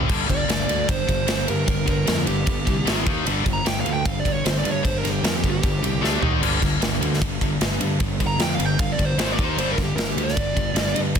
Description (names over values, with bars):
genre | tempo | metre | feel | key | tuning
hard rock | 152 BPM | 4/4 | straight | G phrygian | A4 = 440 Hz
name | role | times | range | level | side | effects
high-gain distorted guitar | riff | 0.0-11.2 s | G2 to Eb4 | -25 LUFS | left 1 dB | distortion
fuzz fingered electric bass | bass | 0.0-11.2 s | G1 to G2 | -27 LUFS | equal | overdrive
big rock drum kit | drums | 0.1-11.2 s | crash cymbal, kick drum, ride cymbal, snare drum, toms | -23 LUFS | equal | none
dark smooth lead guitar | melody | 0.3-11.0 s | G4 to Bb5 | -27 LUFS | right 3 dB | overdrive, digital delay
room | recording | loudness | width
light reverb | dense, heavily limited modern master | -19 LUFS | side -7 dB against mid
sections
0.1-11.2 A section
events
lead electric guitar solo 0.1-11.2; drum fill 6.0-6.4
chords
0.1 Gm; 2.9 Ab5; 3.1 Eb5; 3.3 G5; 6.0 D5; 6.2 Eb5; 6.4 G5; 9.2 Ab5; 9.4 Eb5; 9.6 G5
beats
| 0.09 0.49 0.88 1.28 | 1.68 2.07 2.47 2.86 | 3.26 3.65 4.05 4.44 | 4.84 5.23 5.63 6.02 | 6.42 6.81 7.21 7.60 | 8.00 8.39 8.79 9.18 | 9.58 9.97 10.37 10.76 | 11.15